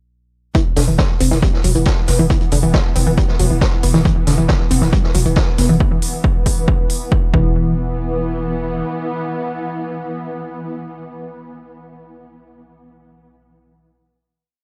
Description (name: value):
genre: driving peak-time techno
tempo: 137 BPM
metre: 4/4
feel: straight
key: unclear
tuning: A4 = 437 Hz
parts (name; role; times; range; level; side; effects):
- tight sequenced synth; riff; 0.5-7.7 s; D3 to C4; -21 LUFS; equal; chorus, phaser, tube saturation, sidechain pumping, tape echo
- swarming drone; drone; 1.3-10.6 s; E3 to B3; -28 LUFS; equal; built-in reverb, sidechain pumping
- electronic kick drum; drums; 0.5-7.4 s; none; -18 LUFS; equal; none
- street-band drum kit; drums; 0.5-5.7 s; hi-hat, snare drum; -29 LUFS; equal; high-pass filter on hats, high-pass filter on snare, high-pass filter on room
- growling 808-style bass; bass; 0.8-8.8 s; E1; -20 LUFS; equal; overdrive, sidechain pumping, low-pass filter
- electronic hi-hat; drums; 0.8-7.0 s; none; -28 LUFS; equal; sidechain pumping on hats
room: little or no reverb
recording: dry, gritty hardware recording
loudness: -16 LUFS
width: mono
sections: 0.5-7.6 groove; 7.6-11.1 final hit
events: none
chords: 0.5 E5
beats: | 0.55 0.99 1.42 1.86 | 2.30 2.74 3.18 3.61 | 4.05 4.49 4.93 5.37 | 5.80 6.24 6.68 7.12 | 7.56 7.99 8.43 8.87 | 9.31 9.75 10.18